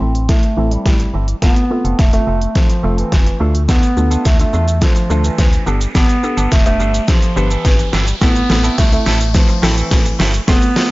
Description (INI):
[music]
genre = dance-pop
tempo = 106 BPM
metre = 4/4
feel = straight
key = A minor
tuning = A4 = 441 Hz
[part]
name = warm bass clarinet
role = melody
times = 0.0-10.9 s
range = E3 to C4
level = -19 LUFS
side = right 1 dB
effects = low-pass filter
[part]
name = hollow square pluck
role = accompaniment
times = 0.0-10.9 s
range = A3 to C5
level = -23 LUFS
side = equal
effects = chorus, sidechain pumping, low-pass filter
[part]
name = clean electric guitar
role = riff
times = 0.0-10.8 s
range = E3 to A4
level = -26 LUFS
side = right 4 dB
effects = wide subtle chorus, low-pass filter
[part]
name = organ-like FM bass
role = bass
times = 0.0-10.6 s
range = E1 to E2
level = -17 LUFS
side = equal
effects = sidechain pumping
[part]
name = riser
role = sound effects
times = 2.4-10.9 s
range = none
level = -30 LUFS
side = left 1 dB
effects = none
[part]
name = deep house drum kit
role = drums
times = 0.1-10.9 s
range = hi-hat, kick drum, shaker, snare drum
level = -14 LUFS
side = equal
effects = none
[sound]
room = little or no reverb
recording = dry, gritty hardware recording, nothing above 7.6 kHz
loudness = -12 LUFS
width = side -20 dB against mid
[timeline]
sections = 0.0-10.9 A section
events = build-up 0.0-10.9; drum fill 0.0-10.9; filter sweep 0.0-10.9; riser 2.4-10.9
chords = 0.0 Am; 1.4 F; 3.4 Dm; 5.7 Gadd9; 8.2 Am